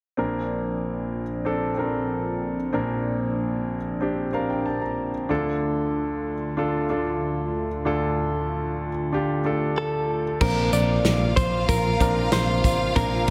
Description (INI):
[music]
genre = piano-driven pop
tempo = 94 BPM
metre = 4/4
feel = straight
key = unclear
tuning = A4 = 440 Hz
[part]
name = clear concert grand piano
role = accompaniment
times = 0.2-13.3 s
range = Bb1 to Bb5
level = -28 LUFS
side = equal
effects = none
[part]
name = sweeping resonant pad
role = sustained chords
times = 0.2-13.3 s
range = D2 to F4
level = -34 LUFS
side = equal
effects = chorus
[part]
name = direct-recorded clean electric guitar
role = melody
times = 9.8-13.3 s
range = A4 to D5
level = -27 LUFS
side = equal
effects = spring reverb
[part]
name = rich studio violin section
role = second line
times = 10.4-13.3 s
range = F4 to F5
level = -32 LUFS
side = equal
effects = none
[part]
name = mellow tine electric piano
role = bass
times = 10.4-13.3 s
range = A1 to Bb1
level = -27 LUFS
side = equal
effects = none
[part]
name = natural country drum kit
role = drums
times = 10.4-13.3 s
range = crash cymbal, hi-hat, kick drum, snare drum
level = -27 LUFS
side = equal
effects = none
[sound]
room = light reverb, studio reverb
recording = none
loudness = -25 LUFS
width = mono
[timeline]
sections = 0.2-10.4 A section; 10.4-13.3 B section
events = grand piano fill 4.0-5.3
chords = 0.2 Bbadd9; 5.3 Dm; 10.4 Bbadd9